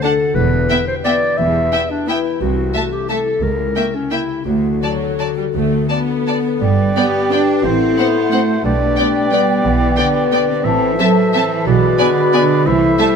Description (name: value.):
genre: classical, orchestral ballroom waltz.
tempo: 157-194 BPM.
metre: 3/4.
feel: rubato.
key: G major.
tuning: A4 = 440 Hz.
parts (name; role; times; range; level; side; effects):
rich studio violin section; melody; 0.0-13.1 s; F#5 to A5; -25 LUFS; left 1 dB; none.
mellow clarinet; second line; 0.0-13.2 s; C#4 to E5; -22 LUFS; left 1 dB; none.
warm studio violin section; second line; 0.0-13.1 s; C5 to F#5; -24 LUFS; left 3 dB; none.
rich studio viola section; accompaniment; 0.0-13.1 s; F#3 to D4; -24 LUFS; right 1 dB; none.
concert harp; arpeggios; 0.0-13.2 s; G2 to E5; -22 LUFS; left 14 dB; none.
clear studio double bass section; bass; 0.4-12.9 s; E1 to D2; -20 LUFS; right 5 dB; none.
rich studio cello section; bass; 0.4-13.2 s; C2 to D4; -20 LUFS; right 5 dB; none.
dark French horn section; sustained chords; 6.4-13.2 s; B3 to A4; -18 LUFS; left 3 dB; none.
clear oboe; second line; 6.6-13.2 s; C5 to E5; -24 LUFS; right 3 dB; none.
large flute ensemble; second line; 6.6-13.2 s; F#5 to B5; -23 LUFS; left 1 dB; none.
mellow bassoon; accompaniment; 6.6-13.2 s; E3 to A3; -24 LUFS; right 3 dB; none.
room: light reverb.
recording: close, detailed microphones.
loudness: -13 LUFS.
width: side -6 dB against mid.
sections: 0.0-6.6 A section; 6.6-13.2 B section.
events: none.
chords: 0.4 Em; 2.4 Am/C; 3.4 C#dim7; 4.5 D; 6.6 G; 7.6 F#dim/A; 8.6 G/B; 10.6 Am; 11.7 G#dim/B; 12.7 Am/C.